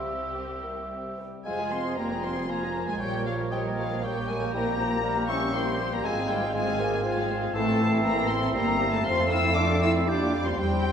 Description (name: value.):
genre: quick classical-period movement for symphony orchestra.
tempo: 118 BPM.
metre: 3/4.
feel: rubato.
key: F minor, F major from 7.5 s.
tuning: A4 = 440 Hz.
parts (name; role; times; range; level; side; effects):
muted chamber violin section; melody; 0.0-10.9 s; G4 to E6; -32 LUFS; left 4 dB; none.
dark cor anglais; second line; 0.0-10.9 s; C5 to Ab5; -35 LUFS; right 2 dB; none.
mellow clarinet; second line; 0.0-10.9 s; Bb3 to G4; -36 LUFS; equal; none.
mellow hollow concert flute; second line; 0.0-10.9 s; G6 to C7; -35 LUFS; left 1 dB; none.
muted chamber violin section; second line; 0.0-10.9 s; E4 to A5; -37 LUFS; left 2 dB; none.
muted studio viola section; accompaniment; 0.0-10.9 s; F3 to Bb4; -35 LUFS; right 1 dB; none.
mellow French horn section; sustained chords; 0.0-10.9 s; F3 to E4; -33 LUFS; left 2 dB; none.
muted chamber cello section; bass; 0.0-10.9 s; C2 to E4; -33 LUFS; right 1 dB; none.
muted symphonic double bass section; bass; 0.0-10.9 s; F1 to F2; -32 LUFS; right 2 dB; none.
mellow bassoon; accompaniment; 1.5-10.9 s; E3 to C4; -34 LUFS; right 2 dB; none.
room: wet recital hall reverb, RT60 1.5 s.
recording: recorded in a church or concert hall.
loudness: -24 LUFS.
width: side -8 dB against mid.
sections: 0.0-1.5 A section; 1.5-10.9 B section.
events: none.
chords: 0.0 C; 1.5 Fm; 3.0 Gdim/Bb; 4.5 C7/Bb; 6.0 Fm/Ab; 7.5 Am; 8.6 C7/G; 9.1 F; 10.1 Gm7/F.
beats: 0.35 0.90 | 1.46 1.98 2.49 | 3.00 3.52 4.03 | 4.54 5.04 5.54 | 6.04 6.54 7.04 | 7.54 8.05 8.55 | 9.06 9.57 10.08 | 10.59.